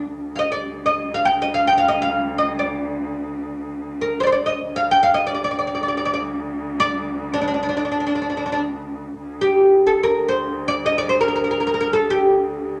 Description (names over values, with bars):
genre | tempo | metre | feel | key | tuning
Arabic maqam ensemble | free time | none | none | D maqam kurd | A4 = 437 Hz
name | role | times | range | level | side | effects
warm cello | drone | 0.0-12.8 s | D2 | -30 LUFS | equal | none
oud | melody | 0.4-12.8 s | D4 to G5 | -20 LUFS | equal | none
room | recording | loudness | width
wet studio reverb, RT60 0.9 s | none | -20 LUFS | mono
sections
0.2-9.2 A section; 9.2-12.8 A section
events
none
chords
none